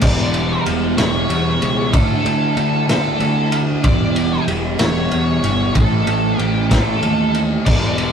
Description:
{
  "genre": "psychedelic rock",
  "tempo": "63 BPM (dotted quarters)",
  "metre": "6/8",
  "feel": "straight",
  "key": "E dorian",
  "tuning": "A4 = 440 Hz",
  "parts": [
    { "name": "octave-fuzz lead guitar", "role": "melody", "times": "0.0-8.1 s", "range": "A4 to D5", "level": "-22 LUFS", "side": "equal", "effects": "distortion" },
    { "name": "percussive tonewheel organ", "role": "sustained chords", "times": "0.0-8.1 s", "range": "G3 to G4", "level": "-26 LUFS", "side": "right 2 dB", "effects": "slow rotary speaker" },
    { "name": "thick fuzz guitar", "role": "riff", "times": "0.0-8.1 s", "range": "E2 to D4", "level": "-20 LUFS", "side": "right 1 dB", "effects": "distortion, phaser" },
    { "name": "fuzz picked electric bass", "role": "bass", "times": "0.0-8.1 s", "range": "E1 to E2", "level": "-21 LUFS", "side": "equal", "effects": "overdrive" },
    { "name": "crunchy breakbeat drum kit", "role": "drums", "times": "0.0-8.1 s", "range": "crash cymbal, kick drum, ride cymbal, snare drum", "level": "-19 LUFS", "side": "equal", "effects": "none" }
  ],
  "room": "moderate booth ambience, RT60 0.2 s",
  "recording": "rough rehearsal-room recording, lossy compression artefacts",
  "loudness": "-14 LUFS",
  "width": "side -7 dB against mid",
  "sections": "0.0-8.1 A section",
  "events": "none",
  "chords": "0.0 Em; 1.9 Dadd9; 3.8 Em; 5.8 A7",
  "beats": "| 0.02 0.98 | 1.93 2.89 | 3.84 4.80 | 5.75 6.71 | 7.66"
}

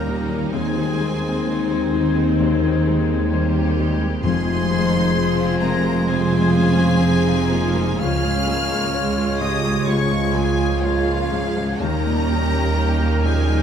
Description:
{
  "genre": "cinematic",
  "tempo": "64 BPM",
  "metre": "4/4",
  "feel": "rubato",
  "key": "F minor",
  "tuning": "A4 = 440 Hz",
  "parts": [
    { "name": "rich studio violin section", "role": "melody", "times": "0.0-13.6 s", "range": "F5 to F6", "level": "-28 LUFS", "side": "left 2 dB", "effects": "none" },
    { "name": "clear clarinet", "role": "second line", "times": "0.0-13.6 s", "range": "F4 to F5", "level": "-31 LUFS", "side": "left 1 dB", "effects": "none" },
    { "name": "clear oboe", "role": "second line", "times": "0.0-13.6 s", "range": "Bb4 to Db5", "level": "-33 LUFS", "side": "right 1 dB", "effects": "none" },
    { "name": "mellow large flute ensemble", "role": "second line", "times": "0.0-13.6 s", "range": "G6 to Ab6", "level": "-31 LUFS", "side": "left 5 dB", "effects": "none" },
    { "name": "rich studio violin section", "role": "second line", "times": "0.0-13.6 s", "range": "C4 to Ab4", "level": "-31 LUFS", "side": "left 3 dB", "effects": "none" },
    { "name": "felt-muted upright piano", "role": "accompaniment", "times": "0.0-13.6 s", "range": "Db2 to Db5", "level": "-27 LUFS", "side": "left 2 dB", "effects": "none" },
    { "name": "warm symphonic viola section", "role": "accompaniment", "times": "0.0-13.6 s", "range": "Eb3 to G4", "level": "-27 LUFS", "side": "right 2 dB", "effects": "none" },
    { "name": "warm French horn section", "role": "sustained chords", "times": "0.0-13.6 s", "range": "Ab3 to G4", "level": "-26 LUFS", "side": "left 3 dB", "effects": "none" },
    { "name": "concert harp", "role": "arpeggios", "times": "0.0-13.6 s", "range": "Db3 to Db5", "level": "-26 LUFS", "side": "left 6 dB", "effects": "none" },
    { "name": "rich symphonic cello section", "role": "bass", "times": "0.0-13.6 s", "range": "Db2 to F2", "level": "-25 LUFS", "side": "right 4 dB", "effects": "none" },
    { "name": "warm symphonic double bass section", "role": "bass", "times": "0.0-13.6 s", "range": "F1 to Eb2", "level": "-23 LUFS", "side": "right 3 dB", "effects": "none" },
    { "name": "timpani", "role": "percussion", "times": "4.2-5.6 s", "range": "F2", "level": "-31 LUFS", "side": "left 1 dB", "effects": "none" }
  ],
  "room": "moderate scoring stage reverb, RT60 1.9 s",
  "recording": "none",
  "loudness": "-17 LUFS",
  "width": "side -8 dB against mid",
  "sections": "0.0-13.6 A section",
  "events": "none",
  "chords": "0.0 Eb; 0.5 Ab/Eb; 4.2 Fm; 8.0 Db; 11.8 Eb",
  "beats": "| 0.53 1.46 2.39 3.32 | 4.24 5.16 6.09 7.03 | 8.00 8.95 9.89 10.83 | 11.82 12.78"
}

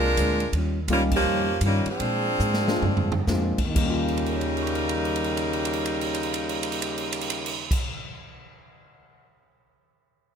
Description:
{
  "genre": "jazz, big band swing",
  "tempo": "119-170 BPM",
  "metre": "4/4",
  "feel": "swing 64% on 8ths",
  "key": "Eb mixolydian",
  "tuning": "A4 = 440 Hz",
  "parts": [
    { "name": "warm saxophone section", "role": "melody", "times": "0.0-7.8 s", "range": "Db3 to Bb4", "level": "-26 LUFS", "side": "equal", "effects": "none" },
    { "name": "vintage hollow-body jazz guitar", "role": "accompaniment", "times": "0.0-7.8 s", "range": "Bb2 to G4", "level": "-32 LUFS", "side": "left 1 dB", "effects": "none" },
    { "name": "upright bass", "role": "bass", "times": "0.0-7.7 s", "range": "C2 to Bb2", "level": "-28 LUFS", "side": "equal", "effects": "none" },
    { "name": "swinging big-band drum kit", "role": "drums", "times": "0.2-9.3 s", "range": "crash cymbal, hi-hat, kick drum, ride cymbal, snare drum, toms", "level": "-29 LUFS", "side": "right 2 dB", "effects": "none" },
    { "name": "dark concert grand piano", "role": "accompaniment", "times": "0.9-8.0 s", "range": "Eb2 to Bb6", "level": "-30 LUFS", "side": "left 2 dB", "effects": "none" }
  ],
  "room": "light reverb",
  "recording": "close, detailed microphones",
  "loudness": "-22 LUFS",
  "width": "side -7 dB against mid",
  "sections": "0.0-3.8 A section; 3.8-7.8 B section",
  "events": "slowing down 0.5-3.8; band accent 1.1; drum fill 2.4-3.3, 4.0-7.7",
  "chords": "0.0 Bb9; 0.5 Eb9; 2.0 Bb9; 3.8 Eb9",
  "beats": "0.18 | 0.53 0.89 1.25 1.62 | 2.00 2.40 2.83 3.28 | 3.76 4.26 4.77 5.27 | 5.78 6.28 6.79 7.29"
}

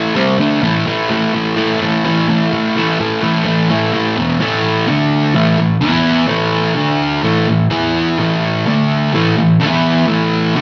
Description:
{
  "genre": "rock",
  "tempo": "127 BPM",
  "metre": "4/4",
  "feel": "straight",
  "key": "unclear",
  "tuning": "A4 = 440 Hz",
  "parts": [
    { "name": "fuzz guitar", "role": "solo", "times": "0.0-10.6 s", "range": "E2 to E4", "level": "-14 LUFS", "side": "equal", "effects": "distortion" }
  ],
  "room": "moderate large studio reverb, RT60 1.4 s",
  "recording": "band playing live in one room, nothing above 7.5 kHz",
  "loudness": "-14 LUFS",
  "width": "mono",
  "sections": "0.0-4.4 A section; 4.4-10.6 B section",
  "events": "none",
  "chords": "0.2 C5; 0.4 D5; 0.6 A5; 4.2 E5; 4.4 A5; 4.9 D5; 5.3 A5; 5.8 E5; 6.3 A5; 6.8 D5; 7.2 A5; 7.7 E5; 8.2 A5; 8.7 D5; 9.1 A5; 9.6 E5; 10.1 A5",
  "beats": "0.16 | 0.63 1.10 1.57 2.04 | 2.52 2.99 3.46 3.93 | 4.40 4.88 5.35 5.82 | 6.29 6.77 7.24 7.71 | 8.19 8.66 9.13 9.61 | 10.08 10.55"
}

